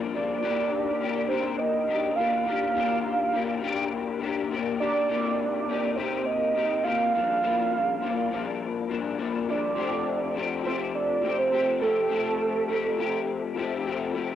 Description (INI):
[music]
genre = indie pop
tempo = 103 BPM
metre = 4/4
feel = straight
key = unclear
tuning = A4 = 440 Hz
[part]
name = electric guitar through a small old amp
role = accompaniment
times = 0.0-14.3 s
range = G2 to G4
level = -28 LUFS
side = left 6 dB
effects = ensemble chorus, vibrato effect, cassette tape, plate reverb
[part]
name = soft octave-layered synth lead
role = melody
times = 0.1-13.8 s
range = A4 to F5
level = -26 LUFS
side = right 4 dB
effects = lush chorus, cassette tape, plate reverb, analog delay
[sound]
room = moderate studio reverb, RT60 0.6 s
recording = home recording on cassette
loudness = -24 LUFS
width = side -10 dB against mid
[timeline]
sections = 0.0-14.3 A section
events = none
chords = 0.4 Ebmaj7; 5.1 Cm7; 7.1 Gm7; 9.8 Fadd9